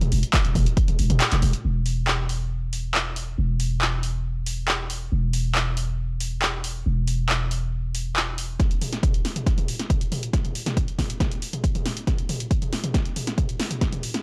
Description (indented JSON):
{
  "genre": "driving peak-time techno",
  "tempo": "138 BPM",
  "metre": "4/4",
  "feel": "straight",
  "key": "unclear",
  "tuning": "A4 = 440 Hz",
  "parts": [
    { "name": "growling 808-style bass", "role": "bass", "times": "0.0-8.6 s", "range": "E1", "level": "-27 LUFS", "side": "equal", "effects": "overdrive, sidechain pumping, low-pass filter" },
    { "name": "punchy analog drum machine", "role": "drums", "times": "0.0-14.2 s", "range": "handclaps, hi-hat, snare drum, toms", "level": "-28 LUFS", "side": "equal", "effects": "overdrive, sidechain pumping on hats, sidechain pumping on toms" },
    { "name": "electronic kick drum", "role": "drums", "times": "0.3-0.9, 8.6-13.9 s", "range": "none", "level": "-25 LUFS", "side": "equal", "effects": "overdrive" }
  ],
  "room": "light reverb",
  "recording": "dry, gritty hardware recording, cassette tape",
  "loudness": "-24 LUFS",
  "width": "mono",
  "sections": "0.0-1.6 A section; 1.6-8.6 B section; 8.6-14.2 C section",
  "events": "drop 0.0-1.6; kick drops out 1.2-1.6; build-up 8.6-14.2; drum fill 8.6-14.2; filter sweep 8.6-14.2",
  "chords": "none"
}